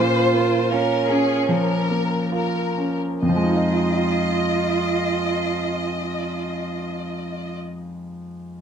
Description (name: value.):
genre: neoclassical piano and strings.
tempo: 66-82 BPM.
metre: 4/4.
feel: rubato.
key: F minor.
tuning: A4 = 440 Hz.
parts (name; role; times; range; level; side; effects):
rich chamber violin section; melody; 0.0-7.5 s; Ab4 to Eb5; -26 LUFS; left 4 dB; slapback echo.
warm cello; second line; 0.0-7.5 s; Db4 to F4; -24 LUFS; right 7 dB; none.
warm concert grand piano; accompaniment; 0.0-8.6 s; F2 to Eb5; -23 LUFS; equal; none.
room: moderate large studio reverb, RT60 0.9 s.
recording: none.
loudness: -19 LUFS.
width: side -8 dB against mid.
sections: 0.0-3.2 A section; 3.2-6.8 B section.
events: slowing down 0.0-3.2.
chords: 0.0 Bbm; 3.2 Fm7.